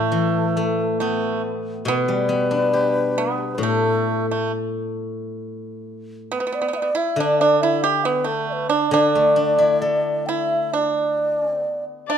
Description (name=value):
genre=chinese traditional, Chinese chamber ensemble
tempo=68 BPM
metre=2/4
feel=rubato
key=D zhi mode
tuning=A4 = 445 Hz
part: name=low xiao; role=melody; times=0.0-12.2 s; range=A4 to G5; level=-23 LUFS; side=right 1 dB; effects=none
part: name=pipa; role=second line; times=0.0-12.2 s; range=A3 to G4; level=-23 LUFS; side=right 6 dB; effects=none
part: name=steel-string zither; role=accompaniment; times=0.0-11.6 s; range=A2 to A4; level=-22 LUFS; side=left 4 dB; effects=none
part: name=warm erhu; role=second line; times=12.1-12.2 s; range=D5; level=-23 LUFS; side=left 8 dB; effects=none
room=light reverb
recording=dark, warm production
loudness=-18 LUFS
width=side -8 dB against mid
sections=0.0-12.2 A section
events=none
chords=none